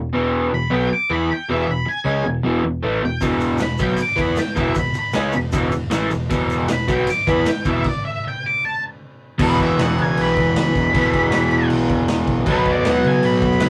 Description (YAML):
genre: garage rock duo or trio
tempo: 155 BPM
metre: 4/4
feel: straight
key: unclear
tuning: A4 = 439 Hz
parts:
  - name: crunchy overdriven guitar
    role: riff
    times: 0.0-13.7 s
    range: E2 to E4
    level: -21 LUFS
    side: equal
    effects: none
  - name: hollow-body short-scale picked electric bass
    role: bass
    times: 0.0-13.7 s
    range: E1 to C#3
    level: -29 LUFS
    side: equal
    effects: tube saturation
  - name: octave-fuzz lead guitar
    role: melody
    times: 0.5-13.7 s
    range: B4 to D6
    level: -25 LUFS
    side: equal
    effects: distortion
  - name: raw garage drum kit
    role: drums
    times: 3.2-13.7 s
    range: crash cymbal, kick drum, ride cymbal, snare drum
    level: -26 LUFS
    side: equal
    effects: none
  - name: egg shaker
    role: percussion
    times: 3.2-7.7 s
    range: none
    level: -44 LUFS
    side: equal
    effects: none
room: wet booth ambience, RT60 0.2 s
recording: rough rehearsal-room recording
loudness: -19 LUFS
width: mono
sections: 0.0-9.4 A section; 9.4-13.7 B section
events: stop 7.9-9.4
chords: 0.0 E5; 7.9 N.C.; 9.4 E5; 12.5 B/D#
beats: | 0.12 0.51 0.89 1.28 | 1.67 2.05 2.44 2.83 | 3.21 3.60 3.99 4.38 | 4.76 5.15 5.53 5.92 | 6.31 6.69 7.08 7.47 | 7.85 8.24 8.62 9.01 | 9.40 9.78 10.17 10.55 | 10.93 11.32 11.70 12.08 | 12.46 12.85 13.23 13.61